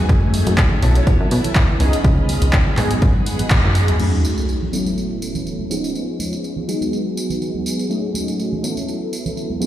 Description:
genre	filtered disco house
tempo	123 BPM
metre	4/4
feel	swing 54% on 16ths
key	F# dorian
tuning	A4 = 441 Hz
part	funky polysynth comp	accompaniment	0.0-9.7 s	E#3 to A4	-23 LUFS	equal	chorus, phaser, sidechain pumping, low-pass filter
part	string machine, full ensemble	sustained chords	0.0-9.7 s	A3 to B5	-28 LUFS	equal	ensemble chorus, sidechain pumping, low-pass filter
part	plucky analog bass	bass	0.0-4.0 s	B1 to B2	-17 LUFS	equal	sidechain pumping, low-pass filter
part	electronic kick drum	drums	0.1-3.6 s	none	-16 LUFS	equal	overdrive
part	punchy analog drum machine	drums	0.1-9.7 s	crash cymbal, handclaps, hi-hat, tambourine	-26 LUFS	equal	overdrive, sidechain pumping on hats, sidechain pumping on cymbals, sidechain pumping on perc
part	tambourine and congas	percussion	0.1-9.7 s	none	-30 LUFS	right 3 dB	sidechain pumping on perc, low-pass filter on perc
part	breathy mellow jazz flute	melody	1.0-1.3 s	C#5	-32 LUFS	left 2 dB	sidechain pumping, low-pass filter
part	sub drop	sound effects	4.0-5.9 s	none	-23 LUFS	equal	none
room	light reverb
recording	played on a big sound system in a bare room, large studio reverb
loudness	-16 LUFS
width	side -12 dB against mid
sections	0.0-4.0 A section; 4.0-9.7 B section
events	band accent 3.5; impact 4.0-6.0; filter sweep 4.0-9.7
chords	0.1 F#m69; 0.8 B7sus4; 1.8 C#9; 2.8 G#m7; 4.0 F#m69; 4.7 B7sus4; 5.7 C#9; 6.7 G#m7; 7.9 F#m69; 8.6 B7sus4

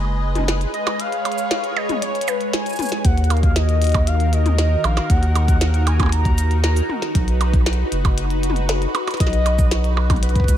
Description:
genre	IDM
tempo	117 BPM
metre	4/4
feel	straight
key	Eb minor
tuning	A4 = 440 Hz
part	phased analog pad	sustained chords	0.0-10.6 s	Eb3 to Eb5	-26 LUFS	equal	phaser, chorus
part	round analog bass	bass	0.0-10.6 s	Gb1 to Eb2	-18 LUFS	equal	none
part	glitchy drum kit	drums	0.4-10.6 s	cabasa, hi-hat, percussion blips, snare drum, toms	-25 LUFS	right 1 dB	studio reverb, analog delay
part	warm velvety synth lead	melody	0.7-10.6 s	Cb5 to Bb5	-26 LUFS	left 2 dB	chorus, analog delay
part	electronic kick drum	drums	3.0-10.6 s	none	-18 LUFS	equal	studio reverb
room	digital ambience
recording	echo-heavy mix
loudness	-16 LUFS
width	side -11 dB against mid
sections	0.0-10.6 A section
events	none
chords	0.0 Abm; 3.0 Ebm; 7.1 B

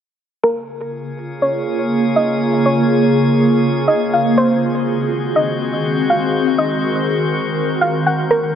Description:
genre	hip hop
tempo	122 BPM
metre	4/4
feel	half-time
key	Bb minor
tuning	A4 = 439 Hz
part	soft round pluck	melody	0.4-8.6 s	Bb4 to Gb5	-18 LUFS	equal	chorus, low-pass filter, tape echo
part	ethereal airy pad	sustained chords	1.0-8.6 s	Db3 to Bb4	-16 LUFS	equal	ensemble chorus, built-in reverb, phaser, low-pass filter
part	drifting glass-harmonics texture	texture	1.1-8.6 s	Ab3 to Db5	-23 LUFS	left 1 dB	chorus, built-in reverb
room	moderate lush hall reverb, RT60 2.1 s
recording	none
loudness	-14 LUFS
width	side -8 dB against mid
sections	0.4-8.6 A section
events	filter sweep 0.4-8.6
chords	0.4 Bbm7; 4.4 Ab7

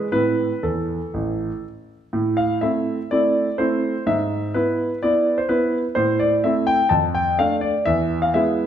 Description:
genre	classical-period piano sonatina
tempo	126 BPM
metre	4/4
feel	rubato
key	A minor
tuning	A4 = 440 Hz
part	clear concert grand piano	solo	0.0-8.7 s	A1 to A5	-18 LUFS	equal	none
room	wet recital hall reverb, RT60 1.4 s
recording	minimal, uncompressed stereo recording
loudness	-18 LUFS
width	side -9 dB against mid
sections	0.0-2.1 A section; 2.1-8.7 B section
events	none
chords	0.1 Am; 4.1 E/G#; 6.0 Am; 6.9 Dm/F; 7.9 E

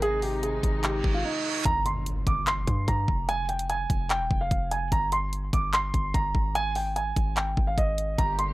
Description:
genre	hip hop, trap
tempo	147 BPM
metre	4/4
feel	half-time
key	G phrygian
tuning	A4 = 440 Hz
part	dark concert grand piano	melody	0.0-8.5 s	Eb4 to D6	-28 LUFS	right 1 dB	low-pass filter
part	muted studio string section	sustained chords	0.0-1.6, 8.2-8.5 s	C3 to G4	-36 LUFS	left 1 dB	none
part	hard-hitting 808-style bass	bass	0.0-8.5 s	Eb1 to G2	-30 LUFS	equal	none
part	trap drum kit	drums	0.0-8.5 s	handclaps, hi-hat, kick drum	-28 LUFS	equal	none
part	reverse cymbal and impact	sound effects	1.0-3.3 s	none	-34 LUFS	right 2 dB	none
room	little or no reverb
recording	dry, gritty hardware recording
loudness	-24 LUFS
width	side -18 dB against mid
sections	0.0-1.7 A section; 1.7-8.5 B section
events	reverse cymbal 1.0-1.7; break 1.2-1.7; impact 1.7-3.3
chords	0.0 Ab; 1.7 Gm; 3.3 Fm; 4.9 Gm; 6.6 Ab5

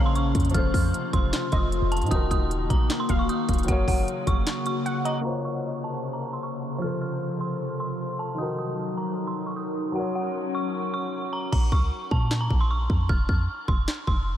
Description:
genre	hip hop, trap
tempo	153 BPM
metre	4/4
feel	half-time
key	Bb harmonic minor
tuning	A4 = 441 Hz
part	dark detuned synth bell	melody	0.0-14.4 s	Gb5 to F6	-32 LUFS	right 2 dB	chorus, diffuse ambient delay
part	warbly dusty pluck	second line	0.0-5.2 s	Eb5 to Gb5	-38 LUFS	right 1 dB	chorus, diffuse ambient delay
part	dark baby grand piano	accompaniment	0.0-11.5 s	Eb3 to Db5	-32 LUFS	left 2 dB	none
part	glassy FM pad	sustained chords	0.0-11.5 s	C3 to Bb4	-30 LUFS	left 2 dB	ensemble chorus, built-in reverb
part	clean 808-style bass	bass	0.0-4.5, 11.5-14.4 s	Eb1 to Bb2	-25 LUFS	equal	none
part	trap drum kit	drums	0.2-5.1, 11.5-14.2 s	crash cymbal, handclaps, hi-hat, kick drum, snare drum	-25 LUFS	equal	none
room	moderate huge ambient reverb, RT60 7.9 s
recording	dreamy mix soaked in reverb, low-pass filter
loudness	-23 LUFS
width	side -11 dB against mid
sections	0.0-5.3 A section; 5.3-11.5 B section; 11.5-14.4 C section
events	break 4.5-5.3; filter sweep 5.3-11.5; hi-hats muted 11.5-14.4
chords	0.0 Bbmadd9; 0.5 F; 2.1 Ebm; 3.7 Gb; 5.3 Bbmadd9; 6.8 F; 8.4 Ebm; 10.0 Gb; 11.5 Bbm; 13.1 F5

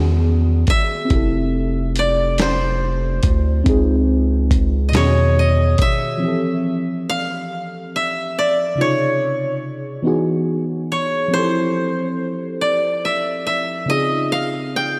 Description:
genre	slow six-eight R&B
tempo	47 BPM (dotted quarters)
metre	6/8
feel	straight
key	unclear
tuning	A4 = 441 Hz
part	koto	melody	0.0-15.0 s	C5 to G5	-23 LUFS	equal	analog delay
part	mellow FM electric piano	accompaniment	0.0-15.0 s	B2 to A4	-24 LUFS	equal	chorus, phaser
part	round analog bass	bass	0.0-5.8 s	F1 to E2	-20 LUFS	equal	none
part	dusty soul sampler-style drum kit	drums	0.7-6.0 s	hi-hat, kick drum, snare drum	-22 LUFS	equal	none
room	moderate lush hall reverb, RT60 2.9 s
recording	dreamy mix soaked in reverb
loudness	-19 LUFS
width	mono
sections	0.0-6.2 A section; 6.2-15.0 A section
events	none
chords	0.0 Emaj9; 1.1 Fmaj9; 3.7 Dbmaj9; 4.9 Emaj9; 6.2 Fmaj9; 8.8 Dbmaj9; 10.0 Emaj9; 11.3 Fmaj9; 13.9 Dbmaj9

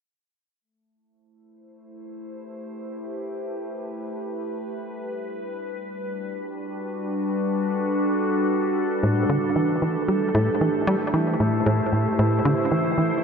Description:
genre	ambient, sequencer-driven space music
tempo	free time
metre	none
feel	none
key	A dorian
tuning	A4 = 440 Hz
part	evolving wavetable pad	sustained chords	1.9-13.2 s	G3 to C5	-24 LUFS	equal	chorus, built-in reverb
part	tight sequencer bass	riff	9.0-13.1 s	A2 to G3	-22 LUFS	equal	tape echo
room	wet lush hall reverb, RT60 2.7 s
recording	dreamy mix soaked in reverb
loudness	-22 LUFS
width	side -6 dB against mid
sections	0.6-13.2 A section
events	fade-in on ambient pad 0.6-13.2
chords	0.6 Am7; 4.8 Gmaj7; 9.0 Am7

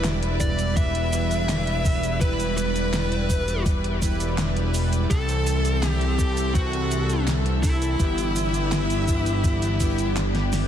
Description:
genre	synthwave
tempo	83 BPM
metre	4/4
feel	straight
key	E minor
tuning	A4 = 440 Hz
part	string machine, full ensemble	sustained chords	0.0-10.7 s	G3 to E5	-31 LUFS	right 1 dB	ensemble chorus, sidechain pumping
part	analog synth brass	stabs	0.0-10.7 s	E3 to B4	-30 LUFS	equal	chorus
part	fat analog bass	bass	0.0-10.7 s	E1 to C2	-25 LUFS	equal	none
part	pop drum kit	drums	0.0-10.7 s	handclaps, hi-hat, shaker, snare drum	-30 LUFS	equal	none
part	smooth overdriven lead guitar	melody	0.4-10.1 s	E4 to E5	-28 LUFS	left 1 dB	ping-pong delay
part	string machine, violins	second line	0.4-10.1 s	E5 to E6	-35 LUFS	equal	ensemble chorus, vintage 12-bit sampler grit, ping-pong delay
part	electronic kick drum	drums	0.4-9.9 s	none	-24 LUFS	equal	none
room	little or no reverb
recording	dense, heavily limited modern master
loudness	-21 LUFS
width	side -10 dB against mid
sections	0.0-10.7 A section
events	drum fill 10.2-10.7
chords	0.0 Em; 5.1 C6; 8.0 G6

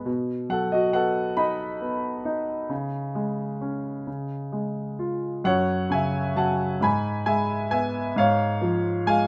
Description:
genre	classical, lyrical solo piano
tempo	44 BPM (dotted quarters)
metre	6/8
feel	rubato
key	F# minor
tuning	A4 = 441 Hz
part	clear concert grand piano	solo	0.0-9.3 s	F#2 to B5	-26 LUFS	equal	none
room	moderate studio ambience, RT60 0.5 s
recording	none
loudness	-26 LUFS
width	mono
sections	0.0-5.5 A section; 5.5-9.3 B section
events	none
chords	0.1 B; 2.7 C#5; 4.1 C#; 5.5 F#5; 6.8 E/G#; 8.2 C#/G#

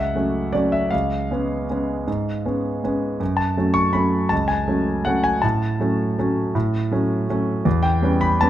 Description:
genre	classical, piano waltz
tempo	161 BPM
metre	3/4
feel	uneven beats, rubato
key	F# minor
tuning	A4 = 440 Hz
part	warm concert grand piano	solo	0.0-8.5 s	C#2 to C#6	-19 LUFS	equal	none
room	light reverb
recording	close, detailed microphones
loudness	-19 LUFS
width	side -12 dB against mid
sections	0.0-8.5 A section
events	none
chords	0.0 F#m; 0.9 C#7; 3.2 F#m; 5.4 F#m/A; 7.7 C#m7b5/E

